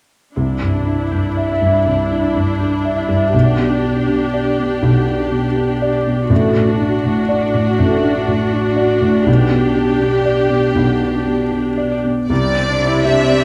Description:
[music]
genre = cinematic, emotional film score for orchestra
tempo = 81 BPM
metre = 4/4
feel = rubato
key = G major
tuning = A4 = 439 Hz
[part]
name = rich studio viola section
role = accompaniment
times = 0.3-13.4 s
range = G3 to D5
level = -22 LUFS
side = equal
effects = none
[part]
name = dark baby grand piano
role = accompaniment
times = 0.4-13.4 s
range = A1 to E5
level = -19 LUFS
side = equal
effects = none
[part]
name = concert harp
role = arpeggios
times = 0.4-13.4 s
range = A2 to E5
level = -22 LUFS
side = equal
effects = none
[part]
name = warm studio violin section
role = melody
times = 12.3-13.4 s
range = D5 to E5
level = -20 LUFS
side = equal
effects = none
[part]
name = rich studio cello section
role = bass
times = 12.3-13.4 s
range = C3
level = -21 LUFS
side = equal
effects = none
[sound]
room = moderate scoring stage reverb, RT60 1.7 s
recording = none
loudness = -16 LUFS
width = mono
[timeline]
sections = 0.4-12.3 A section; 12.3-13.4 B section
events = none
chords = 0.4 Cadd9; 3.3 G/B; 6.3 D/A; 9.3 G/B; 12.3 Cadd9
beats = | 0.36 1.11 1.86 2.60 | 3.34 4.09 4.83 5.57 | 6.31 7.05 7.78 8.53 | 9.28 10.02 10.77 11.53 | 12.30 13.05

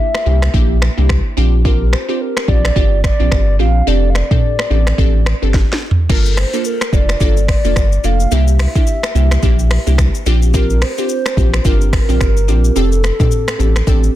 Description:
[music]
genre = afrobeats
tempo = 108 BPM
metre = 4/4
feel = swing 58% on 16ths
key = unclear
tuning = A4 = 440 Hz
[part]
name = hollow clarinet-like synth lead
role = melody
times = 0.0-14.2 s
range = A4 to F5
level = -22 LUFS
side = equal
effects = chorus, digital delay
[part]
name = glassy wavetable pluck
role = accompaniment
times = 0.0-14.1 s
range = Bb3 to A4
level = -20 LUFS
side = right 1 dB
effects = chorus
[part]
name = afro-pop drum kit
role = drums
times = 0.1-14.1 s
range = crash cymbal, finger snaps, hi-hat, kick drum, rim click, shaker, snare drum, toms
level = -16 LUFS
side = equal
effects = soft clipping on snare
[part]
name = saturated sub bass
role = bass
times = 0.3-14.1 s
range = F1 to C2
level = -13 LUFS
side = equal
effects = none
[sound]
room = digital ambience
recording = dense, heavily limited modern master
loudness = -11 LUFS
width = side -14 dB against mid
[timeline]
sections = 0.0-14.2 A section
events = break 0.0-6.1; drum fill 5.5-6.1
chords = 0.0 C7; 1.4 Bb69; 3.9 F6; 6.1 Gm7; 8.3 C7; 10.3 Bb69; 12.8 F6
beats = 0.54 1.09 | 1.65 2.21 2.76 3.32 | 3.87 4.43 4.98 5.54 | 6.09 6.65 7.21 7.76 | 8.32 8.87 9.43 9.98 | 10.54 11.10 11.65 12.21 | 12.76 13.32 13.87

